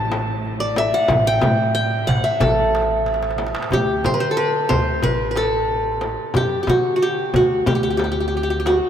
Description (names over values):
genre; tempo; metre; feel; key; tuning
Turkish makam ensemble; 91 BPM; 4/4; straight; A makam huseyni, D makam hicaz from 3.7 s; A4 = 440 Hz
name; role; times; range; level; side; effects
qanun; melody; 0.0-8.9 s; F#4 to A5; -19 LUFS; equal; none
upright bass; bass; 0.0-8.8 s; A1 to D3; -26 LUFS; equal; none
clear chamber cello section; drone; 0.0-3.8 s; A2; -34 LUFS; equal; none
darbuka; percussion; 0.1-8.8 s; none; -26 LUFS; right 1 dB; none
frame drum; percussion; 0.1-8.8 s; none; -27 LUFS; left 3 dB; none
room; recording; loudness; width
wet cathedral reverb, RT60 5.7 s; in a vast, echoing space; -17 LUFS; side -9 dB against mid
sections
0.0-3.7 A section; 3.7-8.9 B section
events
drum fill 3.1-3.7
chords
none